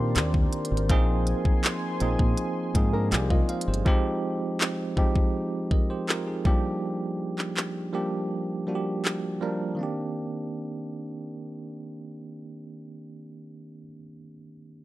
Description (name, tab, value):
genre	contemporary R&B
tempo	81 BPM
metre	4/4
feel	straight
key	C minor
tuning	A4 = 440 Hz
part	bell-like tine electric piano	accompaniment	0.0-14.8 s	Eb3 to F5	-29 LUFS	right 2 dB	medium stereo tremolo
part	chorused pulse-width pad	sustained chords	0.0-3.8 s	Bb4 to C6	-35 LUFS	left 2 dB	none
part	deep dub fingered electric bass	bass	0.0-3.8 s	G1 to Bb2	-26 LUFS	equal	none
part	trap drum kit	drums	0.2-9.2 s	handclaps, hi-hat, kick drum	-24 LUFS	equal	none
part	flamenco guitar	arpeggios	2.9-3.8 s	Ab3 to Bb4	-32 LUFS	left 4 dB	analog delay
room	digital ambience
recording	dry, gritty hardware recording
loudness	-24 LUFS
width	side -16 dB against mid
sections	0.0-9.8 A section; 9.8-12.7 B section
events	none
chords	0.0 Cm9; 0.9 Bb9sus4; 3.9 Fm9; 6.5 Gm7; 9.8 Cm9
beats	0.15 | 0.90 1.64 2.38 3.12 | 3.86 4.60 5.34 6.08 | 6.82 7.56 8.30 9.04 | 9.78 10.53 11.27 12.01